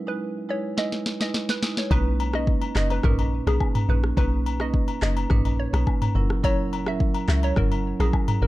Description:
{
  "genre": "afrobeats",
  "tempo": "106 BPM",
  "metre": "4/4",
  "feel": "straight",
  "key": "B major",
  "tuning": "A4 = 439 Hz",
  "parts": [
    { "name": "hollow square pluck", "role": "melody", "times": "0.1-8.5 s", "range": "G#4 to E5", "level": "-31 LUFS", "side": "equal", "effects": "chorus, low-pass filter, plate reverb, ping-pong delay" },
    { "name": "marimba with medium hard mallets", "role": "accompaniment", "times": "0.1-8.5 s", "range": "A#2 to B4", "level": "-29 LUFS", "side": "right 3 dB", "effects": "low-pass filter, plate reverb" },
    { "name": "afro-pop drum kit", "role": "drums", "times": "0.8-8.4 s", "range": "handclaps, kick drum, rim click, snare drum, toms", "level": "-25 LUFS", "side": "equal", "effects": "vintage 12-bit sampler grit" },
    { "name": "deep log drum bass", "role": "bass", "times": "1.9-8.5 s", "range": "F#1 to C#2", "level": "-24 LUFS", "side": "equal", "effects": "none" },
    { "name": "agogo bells and woodblock", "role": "percussion", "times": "1.9-8.4 s", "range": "none", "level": "-34 LUFS", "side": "left 8 dB", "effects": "none" }
  ],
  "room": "light reverb",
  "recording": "dark, warm production",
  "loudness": "-21 LUFS",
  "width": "side -17 dB against mid",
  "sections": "0.0-1.9 A section; 1.9-8.5 B section",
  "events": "break 0.0-1.9; drum fill 0.8-1.9; hi-hats muted 1.9-8.5",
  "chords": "0.0 Emaj7; 1.9 Bmaj9; 6.2 F#7",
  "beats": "0.21 0.78 1.34 | 1.91 2.48 3.04 3.61 | 4.17 4.74 5.30 5.87 | 6.44 7.00 7.57 8.13"
}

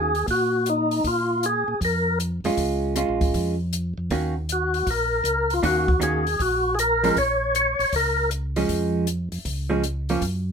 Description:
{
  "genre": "soul jazz organ trio",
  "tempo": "157 BPM",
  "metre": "4/4",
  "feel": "swing 66% on 8ths",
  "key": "Bb minor",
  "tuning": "A4 = 439 Hz",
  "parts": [
    { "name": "percussive tonewheel organ", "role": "melody", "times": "0.0-2.2, 4.5-8.3 s", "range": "Eb4 to Db5", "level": "-21 LUFS", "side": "left 1 dB", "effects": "slow rotary speaker, overdrive, chorus vibrato" },
    { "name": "vintage hollow-body jazz guitar", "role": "accompaniment", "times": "0.0-0.1, 2.5-10.2 s", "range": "Eb3 to Gb4", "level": "-24 LUFS", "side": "right 3 dB", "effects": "none" },
    { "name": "mellow tonewheel organ", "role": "bass", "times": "0.0-10.5 s", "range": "A1 to Bb2", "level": "-27 LUFS", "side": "equal", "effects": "slow rotary speaker" },
    { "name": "compact cocktail drum kit", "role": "drums", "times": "0.1-10.3 s", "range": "hi-hat, kick drum", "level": "-29 LUFS", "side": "left 1 dB", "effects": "none" }
  ],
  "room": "moderate small room reverb, RT60 0.5 s",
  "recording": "minimal, uncompressed stereo recording",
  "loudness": "-21 LUFS",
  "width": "side -6 dB against mid",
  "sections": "0.0-10.5 A section",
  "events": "none",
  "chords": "0.0 Ebm; 1.1 Bbm7; 4.1 Ebm7; 7.2 Bbm7",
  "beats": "0.29 0.67 | 1.05 1.43 1.81 2.20 | 2.58 2.96 3.34 3.73 | 4.11 4.49 4.87 5.25 | 5.64 6.02 6.40 6.78 | 7.17 7.55 7.93 8.31 | 8.70 9.08 9.46 9.84 | 10.22"
}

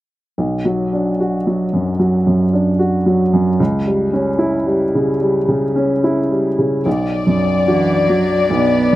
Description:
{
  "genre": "neoclassical piano and strings",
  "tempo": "70-76 BPM",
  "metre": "4/4",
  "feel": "rubato",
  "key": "B minor",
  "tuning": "A4 = 439 Hz",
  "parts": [
    { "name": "clear upright piano", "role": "accompaniment", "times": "0.4-9.0 s", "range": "B1 to F#4", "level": "-14 LUFS", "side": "equal", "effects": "none" },
    { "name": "warm chamber violin section", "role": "melody", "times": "6.9-9.0 s", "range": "D5", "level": "-18 LUFS", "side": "left 5 dB", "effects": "none" },
    { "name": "warm cello", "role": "second line", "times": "7.7-9.0 s", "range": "E3 to B3", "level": "-18 LUFS", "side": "right 3 dB", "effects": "none" }
  ],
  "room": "little or no reverb",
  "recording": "recorded outdoors, with no room sound",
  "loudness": "-14 LUFS",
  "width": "side -15 dB against mid",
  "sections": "0.4-6.9 A section; 6.9-9.0 B section",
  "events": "none",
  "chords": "0.4 Bm; 3.6 C#dim; 6.9 Bm",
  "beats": "| 0.39 1.21 2.01 2.80 | 3.59 4.38 5.20 6.02 | 6.86 7.67 8.51"
}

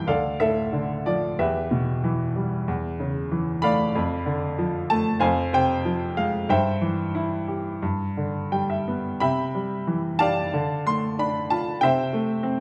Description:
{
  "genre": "classical, lyrical solo piano",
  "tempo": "92 BPM",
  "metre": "4/4",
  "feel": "uneven beats, rubato",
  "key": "C major",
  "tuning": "A4 = 439 Hz",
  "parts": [
    { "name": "bright baby grand piano", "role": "solo", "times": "0.0-12.6 s", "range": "D2 to C6", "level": "-24 LUFS", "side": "equal", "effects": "none" }
  ],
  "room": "moderate recital hall reverb, RT60 1.3 s",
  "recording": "dark, warm production",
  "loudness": "-25 LUFS",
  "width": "mono",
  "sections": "0.0-12.6 A section",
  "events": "grand piano fill 8.2-9.2",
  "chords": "0.1 Dm; 1.4 Em; 2.7 A/E; 3.9 Dm/F; 5.2 Fm; 6.5 C/G; 7.8 G; 9.2 C; 10.5 Dm; 11.8 Am/C",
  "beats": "0.07 0.73 | 1.39 2.04 2.68 3.31 | 3.94 4.57 5.20 5.85 | 6.50 7.15 7.82 8.52 | 9.20 9.86 10.52 11.18 | 11.81 12.43"
}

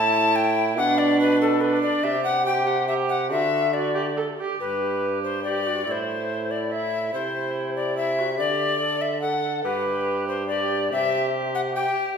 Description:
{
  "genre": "classical, renaissance-style consort dance",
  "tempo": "142 BPM",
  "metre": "3/4",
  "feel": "straight",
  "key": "G major",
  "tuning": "A4 = 440 Hz",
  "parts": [
    { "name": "alto recorder", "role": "melody", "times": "0.0-12.2 s", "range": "A4 to A5", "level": "-24 LUFS", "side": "left 4 dB", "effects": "none" },
    { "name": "rich viola", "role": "second line", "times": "0.0-12.2 s", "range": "D4 to A4", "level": "-26 LUFS", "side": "right 4 dB", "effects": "none" },
    { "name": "clear trombone", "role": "bass", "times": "0.0-11.9 s", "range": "G2 to D3", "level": "-28 LUFS", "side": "right 2 dB", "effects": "none" }
  ],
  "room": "wet recital hall reverb, RT60 1.4 s",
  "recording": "minimal, uncompressed stereo recording",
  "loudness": "-21 LUFS",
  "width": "side -6 dB against mid",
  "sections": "0.0-4.6 A section; 4.6-12.2 B section",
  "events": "none",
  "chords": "0.0 A5; 0.8 Bm; 2.0 C5; 3.3 D; 4.6 G; 5.9 Am; 7.1 C; 8.4 Dsus4; 9.6 G; 10.9 C",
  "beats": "0.35 | 0.77 1.19 1.61 | 2.04 2.46 2.88 | 3.31 3.74 4.17 | 4.60 5.02 5.44 | 5.86 6.29 6.71 | 7.13 7.55 7.97 | 8.39 8.81 9.23 | 9.65 10.06 10.48 | 10.90 11.33 11.75"
}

